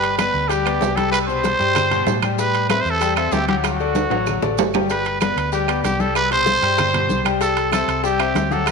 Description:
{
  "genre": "latin, salsa",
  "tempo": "191 BPM",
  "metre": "4/4",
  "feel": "straight",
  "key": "G major",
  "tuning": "A4 = 439 Hz",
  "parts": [
    { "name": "growling trumpet", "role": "melody", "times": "0.0-8.7 s", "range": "F#4 to C5", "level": "-20 LUFS", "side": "right 2 dB", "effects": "tape echo" },
    { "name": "clear concert grand piano", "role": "accompaniment", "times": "0.0-8.7 s", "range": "B2 to G5", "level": "-23 LUFS", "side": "left 10 dB", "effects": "none" },
    { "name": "hollow-body short-scale fingered electric bass", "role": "bass", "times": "0.0-8.7 s", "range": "G1 to A2", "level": "-26 LUFS", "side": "right 2 dB", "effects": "none" },
    { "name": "congas", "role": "percussion", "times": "0.0-8.7 s", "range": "none", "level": "-27 LUFS", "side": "left 2 dB", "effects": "none" },
    { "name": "maracas", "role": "percussion", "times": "0.0-8.7 s", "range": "none", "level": "-37 LUFS", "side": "right 16 dB", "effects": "none" },
    { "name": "timbales", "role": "percussion", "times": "0.0-8.7 s", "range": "none", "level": "-26 LUFS", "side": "right 15 dB", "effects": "none" },
    { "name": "bongos", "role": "percussion", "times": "0.2-8.7 s", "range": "none", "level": "-30 LUFS", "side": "left 12 dB", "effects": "none" },
    { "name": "claves", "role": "percussion", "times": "0.2-8.7 s", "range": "none", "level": "-33 LUFS", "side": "right 15 dB", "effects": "none" }
  ],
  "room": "moderate plate reverb, RT60 2.5 s",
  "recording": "1960s-style stereo with parts hard left and right",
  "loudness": "-16 LUFS",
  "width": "side -4 dB against mid",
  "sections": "0.0-4.9 A section; 4.9-8.7 A section",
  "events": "drum fill 4.0-4.9",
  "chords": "0.0 G; 1.1 C5; 2.4 Am7; 3.6 D; 4.9 G; 6.2 C5; 7.4 Am7/C",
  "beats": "0.19 0.50 0.82 | 1.13 1.44 1.76 2.07 | 2.38 2.70 3.01 3.33 | 3.64 3.95 4.27 4.58 | 4.90 5.21 5.53 5.84 | 6.15 6.47 6.78 7.10 | 7.41 7.73 8.04 8.36 | 8.67"
}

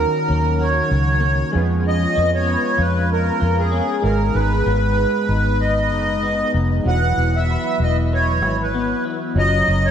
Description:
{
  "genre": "indie pop",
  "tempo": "96 BPM",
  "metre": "4/4",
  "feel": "straight",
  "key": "unclear",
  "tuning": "A4 = 438 Hz",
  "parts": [
    { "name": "accordion", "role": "melody", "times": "0.0-9.9 s", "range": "G#4 to F#5", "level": "-20 LUFS", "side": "right 1 dB", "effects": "light tremolo tuning, wide subtle chorus" },
    { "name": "electric guitar through a small old amp", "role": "accompaniment", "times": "0.0-9.9 s", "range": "G#2 to B4", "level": "-25 LUFS", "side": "left 3 dB", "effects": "analog chorus, warbly pitch drift" },
    { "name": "warm analog keys", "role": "accompaniment", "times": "0.0-9.9 s", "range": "F#3 to A#5", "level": "-27 LUFS", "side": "right 4 dB", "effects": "chorus, phaser" },
    { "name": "vintage muted fingered electric bass", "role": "bass", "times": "0.0-9.9 s", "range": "E1 to E#2", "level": "-19 LUFS", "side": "equal", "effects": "none" }
  ],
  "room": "wet lush hall reverb, RT60 2.7 s",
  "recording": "dreamy mix soaked in reverb",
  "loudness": "-16 LUFS",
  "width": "side -8 dB against mid",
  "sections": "0.0-9.9 A section",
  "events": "none",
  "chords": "0.0 D#m7; 1.5 C#7/E#; 4.0 G#m; 6.9 Esus2; 9.4 F#maj7",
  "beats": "0.60 1.23 | 1.86 2.48 3.11 3.73 | 4.36 4.99 5.61 6.24 | 6.87 7.49 8.12 8.74 | 9.37"
}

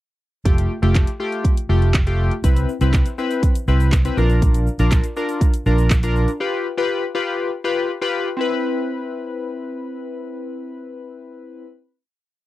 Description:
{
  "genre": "dance-pop",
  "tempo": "121 BPM",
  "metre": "4/4",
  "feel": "straight",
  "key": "C major",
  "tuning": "A4 = 440 Hz",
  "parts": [
    { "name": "warm analog keys", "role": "accompaniment", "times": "0.5-11.7 s", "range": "A3 to B4", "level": "-23 LUFS", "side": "left 3 dB", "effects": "chorus, sidechain pumping" },
    { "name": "vintage muted fingered electric bass", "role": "bass", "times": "0.5-6.3 s", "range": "F1 to C2", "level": "-17 LUFS", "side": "right 1 dB", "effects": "sidechain pumping" },
    { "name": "house drum kit", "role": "drums", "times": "0.5-6.4 s", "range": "handclaps, hi-hat, kick drum, shaker", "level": "-17 LUFS", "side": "right 1 dB", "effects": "none" }
  ],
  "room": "little or no reverb",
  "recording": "dry, close 1970s-style studio recording",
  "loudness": "-17 LUFS",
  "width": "side -16 dB against mid",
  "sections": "0.5-8.4 pre-chorus; 8.4-12.4 final chord",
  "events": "none",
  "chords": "0.5 Fadd9; 2.4 Cmaj7; 4.2 Bb; 6.4 G7; 8.4 Cmaj7",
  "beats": "| 0.45 0.95 1.45 1.94 | 2.44 2.93 3.43 3.92 | 4.42 4.92 5.41 5.91 | 6.41 6.90 7.40 7.89 | 8.39 8.88 9.38 9.88 | 10.37 10.87 11.36"
}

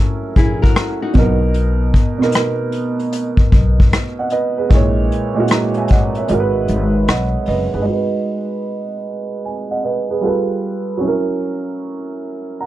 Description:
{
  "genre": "lo-fi hip hop",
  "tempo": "76 BPM",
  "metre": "4/4",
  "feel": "swing 66% on 16ths",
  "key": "G# minor",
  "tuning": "A4 = 439 Hz",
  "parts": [
    { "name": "dark upright piano", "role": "accompaniment", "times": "0.0-12.7 s", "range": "A#2 to A#5", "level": "-18 LUFS", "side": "right 3 dB", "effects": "low-pass filter, plate reverb" },
    { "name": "nylon-string guitar", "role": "second line", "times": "0.4-1.4 s", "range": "D#4 to A#4", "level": "-23 LUFS", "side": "left 3 dB", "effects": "low-pass filter, analog delay, plate reverb" },
    { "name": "upright bass", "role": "bass", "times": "0.4-7.9 s", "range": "F#1 to B1", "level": "-18 LUFS", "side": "left 1 dB", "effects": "none" },
    { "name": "vintage brush drum kit", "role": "drums", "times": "0.4-7.7 s", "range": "hi-hat, kick drum, rim click", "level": "-14 LUFS", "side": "left 1 dB", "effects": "none" }
  ],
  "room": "light reverb",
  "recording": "dark, warm production",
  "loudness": "-14 LUFS",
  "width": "side -14 dB against mid",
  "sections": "0.0-7.9 A section; 7.9-12.7 B section",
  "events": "kick muted 6.3-7.9; filter sweep on upright piano 7.9-12.7",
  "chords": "0.0 F#7; 1.2 Bmaj7; 4.7 A#m7b5; 6.3 G#m7; 10.2 G9; 11.0 F#7",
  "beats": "0.76 | 1.55 2.34 3.13 3.92 | 4.71 5.50 6.29 7.08 | 7.86 8.65 9.44 10.23 | 11.02 11.81 12.60"
}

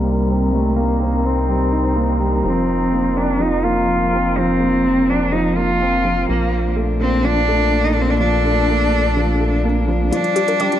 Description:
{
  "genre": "piano and strings electronica",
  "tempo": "125 BPM",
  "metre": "4/4",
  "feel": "straight",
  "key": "unclear",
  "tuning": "A4 = 440 Hz",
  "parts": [
    { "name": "bright cello", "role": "melody", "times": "0.0-10.8 s", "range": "G3 to F4", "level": "-19 LUFS", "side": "left 1 dB", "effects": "none" },
    { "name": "dark string quartet", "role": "sustained chords", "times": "0.0-10.8 s", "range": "Bb2 to Bb4", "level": "-23 LUFS", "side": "left 1 dB", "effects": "none" },
    { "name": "felt-muted upright piano", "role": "riff", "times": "0.0-10.8 s", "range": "F3 to Eb4", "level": "-21 LUFS", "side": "right 2 dB", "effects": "digital delay" },
    { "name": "round analog bass", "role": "bass", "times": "0.0-10.1 s", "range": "F1 to C2", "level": "-21 LUFS", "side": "equal", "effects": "none" },
    { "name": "wide unison pluck", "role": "arpeggios", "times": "10.1-10.8 s", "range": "F4 to D5", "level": "-23 LUFS", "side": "left 3 dB", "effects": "digital delay" },
    { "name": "electronic hi-hat", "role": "drums", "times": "10.1-10.8 s", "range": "none", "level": "-33 LUFS", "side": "left 1 dB", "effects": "overdrive, high-pass filter on hats, low-pass filter on hats, high-pass filter on room, low-pass filter on room" }
  ],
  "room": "wet recital hall reverb, RT60 1.4 s, small room ambience",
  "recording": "dark, warm production, low-pass filter",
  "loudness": "-15 LUFS",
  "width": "side -11 dB against mid",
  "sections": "0.0-10.1 A section",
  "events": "filter sweep 0.0-10.1",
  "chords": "0.0 Cm7; 2.4 F7sus4; 6.3 Bbmaj7; 10.1 G7(no3)",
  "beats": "0.04 | 0.53 1.00 1.49 1.97 | 2.44 2.92 3.40 3.88 | 4.37 4.84 5.33 5.80 | 6.29 6.76 7.25 7.72 | 8.21 8.69 9.16 9.64 | 10.12 10.61"
}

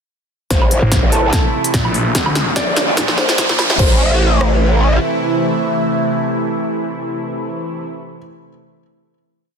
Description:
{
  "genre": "heavy wobble dubstep",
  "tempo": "146 BPM",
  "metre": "4/4",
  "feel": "swing 54% on 16ths, half-time",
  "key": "A phrygian",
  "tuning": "A4 = 440 Hz",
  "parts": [
    { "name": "dark baby grand piano", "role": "melody", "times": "0.5-8.2 s", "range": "A4 to D5", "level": "-25 LUFS", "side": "equal", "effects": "digital delay" },
    { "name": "supersaw pad", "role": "sustained chords", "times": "0.5-7.8 s", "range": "C3 to F4", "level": "-20 LUFS", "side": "right 1 dB", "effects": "phaser, sidechain pumping" },
    { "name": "growl bass", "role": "bass", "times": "0.5-5.0 s", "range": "F1 to Bb1", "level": "-15 LUFS", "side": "equal", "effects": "chorus, overdrive" },
    { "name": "big-room dance drum kit", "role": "drums", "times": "0.5-4.5 s", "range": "kick drum, rim click", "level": "-18 LUFS", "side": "equal", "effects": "none" },
    { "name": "big-room dance drum kit", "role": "drums", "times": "0.5-3.9 s", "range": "crash cymbal, hi-hat, snare drum, woodblock", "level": "-19 LUFS", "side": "equal", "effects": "high-pass filter on snare, high-pass filter on hats, high-pass filter on perc, high-pass filter on cymbals, high-pass filter on room" },
    { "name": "riser", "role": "sound effects", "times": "1.6-3.8 s", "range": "none", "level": "-23 LUFS", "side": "right 2 dB", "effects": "none" },
    { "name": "snarling distorted saw bass", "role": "bass", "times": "0.8-3.7 s", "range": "A1 to D2", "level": "-18 LUFS", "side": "equal", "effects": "distortion, overdrive" }
  ],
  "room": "light reverb",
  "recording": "dense, heavily limited modern master, high-pass filter",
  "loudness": "-13 LUFS",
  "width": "side -6 dB against mid",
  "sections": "0.5-3.8 build; 3.8-7.1 final chord",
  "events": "build-up 0.5-3.8; drum fill 0.5-3.8; filter sweep 0.5-3.8; riser 1.6-3.8",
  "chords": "0.5 Am; 2.1 Bb; 3.8 Am",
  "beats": "| 0.51 0.92 1.33 1.74 | 2.15 2.56 2.97 3.38 | 3.79 4.20 4.62 5.03 | 5.44 5.85 6.26 6.67"
}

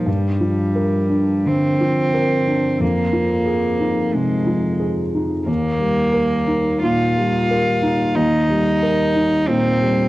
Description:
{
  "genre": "neoclassical piano and strings",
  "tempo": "90 BPM",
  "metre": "4/4",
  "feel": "rubato",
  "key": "Eb major",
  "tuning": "A4 = 441 Hz",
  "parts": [
    { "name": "warm cello", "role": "second line", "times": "0.0-10.1 s", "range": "G3 to F4", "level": "-20 LUFS", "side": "right 1 dB", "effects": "none" },
    { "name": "dark baby grand piano", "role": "accompaniment", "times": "0.0-10.1 s", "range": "Eb2 to Bb4", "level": "-18 LUFS", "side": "equal", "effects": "none" }
  ],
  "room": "light reverb, small room reverb",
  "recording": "home recording on cassette",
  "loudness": "-16 LUFS",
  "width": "side -17 dB against mid",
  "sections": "0.0-10.1 A section",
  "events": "none",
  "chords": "0.1 Gm7; 2.8 Fm7; 5.5 Eb",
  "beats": "| 0.07 0.76 1.47 2.15 | 2.81 3.48 4.15 4.82 | 5.47 6.13 6.84 7.50 | 8.16 8.82 9.48"
}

